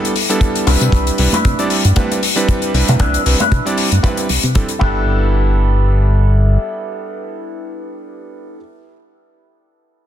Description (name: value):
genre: nu-disco, nu disco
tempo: 116 BPM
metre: 4/4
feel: swing 55% on 16ths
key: G major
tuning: A4 = 438 Hz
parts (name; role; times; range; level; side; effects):
- clear electric grand piano; accompaniment; 0.0-8.6 s; G3 to D5; -20 LUFS; right 2 dB; dub echo
- electric guitar with an envelope filter; riff; 0.0-8.6 s; D4 to B4; -23 LUFS; left 2 dB; wide subtle chorus, low-pass filter, dub echo
- hi-hat; drums; 0.0-4.8 s; none; -20 LUFS; left 6 dB; studio reverb
- kick drum; drums; 0.4-4.9 s; none; -16 LUFS; equal; studio reverb
- chorused synth bass; bass; 0.7-6.6 s; G1 to C3; -14 LUFS; equal; none
- congas; percussion; 1.3-4.0 s; none; -26 LUFS; right 2 dB; none
room: light reverb, studio ambience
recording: dense, heavily limited modern master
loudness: -12 LUFS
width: side -11 dB against mid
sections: 0.0-5.1 A section; 5.1-9.2 B section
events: filter sweep on analog synth bass 0.0-5.1; filter sweep on clean electric guitar 0.0-5.1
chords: 0.0 G6; 0.7 Cmaj9; 4.8 G6